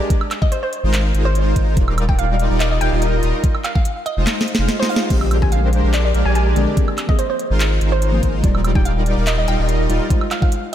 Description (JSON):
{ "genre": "future bass", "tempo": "144 BPM", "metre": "4/4", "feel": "half-time", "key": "unclear", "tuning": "A4 = 440 Hz", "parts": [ { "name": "electronic kick drum", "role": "drums", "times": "0.1-10.5 s", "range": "none", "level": "-17 LUFS", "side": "equal", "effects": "overdrive" }, { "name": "trap drum kit", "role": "drums", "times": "0.1-10.7 s", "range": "crash cymbal, handclaps, hi-hat, snare drum, woodblock", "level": "-24 LUFS", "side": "right 1 dB", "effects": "overdrive" }, { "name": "hollow square pluck", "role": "melody", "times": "0.4-10.7 s", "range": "C5 to Ab5", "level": "-25 LUFS", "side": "equal", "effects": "wide subtle chorus, cassette tape, sidechain pumping, analog delay" }, { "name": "soft supersaw", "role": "riff", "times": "0.8-10.0 s", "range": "G3 to F5", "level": "-22 LUFS", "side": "equal", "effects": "analog chorus, sidechain pumping, ping-pong delay" }, { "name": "saturated sub bass", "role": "bass", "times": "0.8-10.0 s", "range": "Eb1 to Bb1", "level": "-18 LUFS", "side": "equal", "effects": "sidechain pumping" }, { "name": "soft round pluck", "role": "accompaniment", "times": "5.1-10.7 s", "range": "D3 to D5", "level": "-26 LUFS", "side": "left 2 dB", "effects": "chorus, sidechain pumping, ping-pong delay" } ], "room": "moderate lush hall reverb, RT60 1.7 s, digital ambience", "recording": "dreamy mix soaked in reverb", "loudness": "-15 LUFS", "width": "side -11 dB against mid", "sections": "0.0-10.7 A section", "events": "drum fill 4.3-5.1; kick drops out 4.7-5.1", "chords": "0.1 Ab69; 1.8 Ebmaj9; 3.4 Fm7; 5.1 Bb13; 6.8 Ab69; 8.4 Ebmaj9; 10.1 Fm7" }